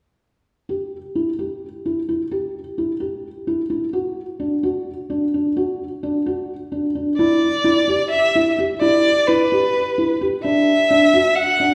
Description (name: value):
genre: contemporary instrumental, contemporary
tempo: 258 BPM (eighths)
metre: 7/8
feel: straight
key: E minor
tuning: A4 = 440 Hz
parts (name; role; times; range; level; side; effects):
- felt-muted upright piano; arpeggios; 0.7-11.7 s; D4 to G4; -22 LUFS; equal; none
- rich violin; melody; 7.2-11.7 s; B4 to F#5; -19 LUFS; equal; none
room: wet recital hall reverb, RT60 1.8 s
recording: recorded in a church or concert hall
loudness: -20 LUFS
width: mono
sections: 0.7-7.2 A section; 7.2-11.7 B section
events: none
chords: 0.7 Em; 3.9 D; 7.2 Em7; 10.4 D